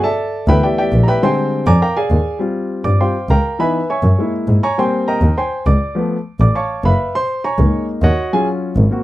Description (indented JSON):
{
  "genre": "Afro-Cuban jazz",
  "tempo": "203 BPM",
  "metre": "4/4",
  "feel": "straight",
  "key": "unclear",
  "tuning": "A4 = 439 Hz",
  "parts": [
    { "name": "warm baby grand piano", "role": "accompaniment", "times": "0.0-9.0 s", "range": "D3 to D6", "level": "-17 LUFS", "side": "equal", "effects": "none" },
    { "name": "dark double bass", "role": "bass", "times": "0.5-8.8 s", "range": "Gb1 to Ab2", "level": "-14 LUFS", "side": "equal", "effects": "none" }
  ],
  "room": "light reverb",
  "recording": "dry, close 1970s-style studio recording",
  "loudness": "-14 LUFS",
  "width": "side -16 dB against mid",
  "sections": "0.0-2.4 A section; 2.4-9.0 A section",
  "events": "grand piano solo 0.0-9.0",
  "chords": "0.0 G69; 1.2 Bb13; 2.4 Eb69 (rootless); 3.6 Dbm7; 4.2 Gb9 (rootless); 4.8 Abmaj9; 6.0 Db7alt; 7.1 Gb69; 8.3 Ebm7 (rootless)",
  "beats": "| 0.04 0.34 0.64 0.93 | 1.23 1.52 1.82 2.11 | 2.41 2.71 3.00 3.30 | 3.59 3.89 4.19 4.48 | 4.78 5.07 5.37 5.67 | 5.96 6.26 6.55 6.85 | 7.14 7.44 7.73 8.03 | 8.32 8.62 8.91"
}